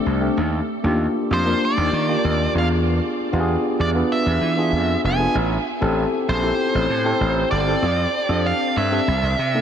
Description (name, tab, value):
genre	polished 1980s jazz-funk pop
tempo	96 BPM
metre	4/4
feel	straight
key	unclear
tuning	A4 = 440 Hz
part	tine electric piano	accompaniment	0.0-9.6 s	A3 to B4	-22 LUFS	left 1 dB	lush chorus
part	gritty slap bass	bass	0.1-9.6 s	F1 to E3	-22 LUFS	right 1 dB	overdrive
part	nasal lead guitar with a parked wah	melody	1.3-9.6 s	C5 to G#5	-23 LUFS	right 1 dB	overdrive
room	wet huge ambient reverb, RT60 7.8 s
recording	dreamy mix soaked in reverb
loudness	-18 LUFS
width	side -8 dB against mid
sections	0.0-9.6 A section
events	none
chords	0.4 Ebmaj7; 2.6 E7b9; 5.3 Am7; 7.8 F69; 9.1 C9